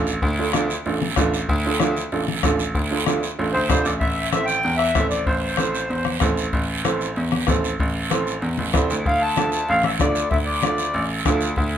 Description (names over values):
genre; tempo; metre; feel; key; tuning
latin, cumbia; 190 BPM; 4/4; straight; D minor; A4 = 440 Hz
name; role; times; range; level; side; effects
warm upright piano; accompaniment; 0.0-11.5 s; C4 to A4; -25 LUFS; right 4 dB; none
clear grand piano; bass; 0.0-11.8 s; A1 to E2; -24 LUFS; equal; none
guiro; percussion; 0.1-11.8 s; none; -31 LUFS; right 6 dB; none
bombo; percussion; 0.2-11.7 s; none; -25 LUFS; left 2 dB; none
congas; percussion; 0.5-11.4 s; none; -28 LUFS; left 4 dB; none
accordion; melody; 3.5-6.2, 9.1-11.1 s; C5 to A5; -22 LUFS; left 1 dB; none
room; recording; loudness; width
moderate large studio reverb, RT60 1.0 s; minimal, uncompressed stereo recording; -19 LUFS; side -10 dB against mid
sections
0.0-4.0 A section; 4.0-11.8 B section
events
none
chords
0.0 Dm; 4.0 Am; 9.1 Dm